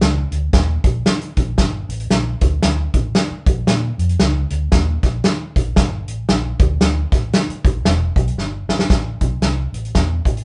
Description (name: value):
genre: uptempo 1960s-style soul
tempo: 115 BPM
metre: 4/4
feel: swing 59% on 8ths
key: G minor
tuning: A4 = 441 Hz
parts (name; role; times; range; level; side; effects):
- vintage muted fingered electric bass; bass; 0.0-10.4 s; E1 to Eb3; -23 LUFS; equal; none
- natural country drum kit; drums; 0.0-10.4 s; hi-hat, kick drum, snare drum; -19 LUFS; equal; none
room: moderate studio reverb, RT60 0.5 s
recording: band playing live in one room, nothing above 10.4 kHz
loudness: -18 LUFS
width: mono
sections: 0.0-8.9 A section; 8.9-10.4 B section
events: drum fill 8.4-8.9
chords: none